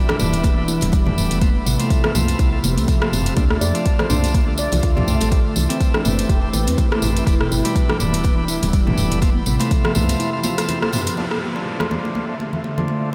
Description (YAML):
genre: afro house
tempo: 123 BPM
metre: 4/4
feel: swing 57% on 16ths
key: unclear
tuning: A4 = 439 Hz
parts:
  - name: ethereal airy pad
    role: sustained chords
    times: 0.0-13.1 s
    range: D3 to E5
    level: -29 LUFS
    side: equal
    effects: ensemble chorus, built-in reverb, sidechain pumping
  - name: bright tonewheel organ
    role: stabs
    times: 0.0-13.1 s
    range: C4 to C5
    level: -31 LUFS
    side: equal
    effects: overdrive, stopped rotary speaker, sidechain pumping, low-pass filter, tape echo
  - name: handpan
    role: arpeggios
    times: 0.1-11.1 s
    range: B2 to D5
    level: -26 LUFS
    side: equal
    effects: sidechain pumping, tape echo
  - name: deep house drum kit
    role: drums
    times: 0.1-11.9 s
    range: hi-hat, rim click, toms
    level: -28 LUFS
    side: equal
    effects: overdrive
  - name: congas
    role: percussion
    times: 0.1-13.0 s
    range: none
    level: -30 LUFS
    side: equal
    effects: none
  - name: woody FM bass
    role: bass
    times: 0.2-10.2 s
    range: D1 to F2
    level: -25 LUFS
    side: equal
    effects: sidechain pumping
  - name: tambourine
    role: percussion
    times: 0.2-11.2 s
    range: none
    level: -32 LUFS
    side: equal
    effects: none
  - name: electronic kick drum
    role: drums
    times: 0.4-9.8 s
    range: none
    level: -20 LUFS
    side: equal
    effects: overdrive
  - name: downlifter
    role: sound effects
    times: 11.2-13.1 s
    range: none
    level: -33 LUFS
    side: equal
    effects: none
room: moderate huge ambient reverb, RT60 7.8 s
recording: dreamy mix soaked in reverb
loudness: -19 LUFS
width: mono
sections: 0.0-11.2 A section; 11.2-13.1 B section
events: break 10.2-11.2; band accent 10.8; filter sweep on ambient pad 11.2-13.1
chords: 0.0 Em7; 1.4 Fmaj7; 3.4 Dm7; 5.3 Am7; 7.3 Em7; 9.2 Fmaj7; 11.2 Dm7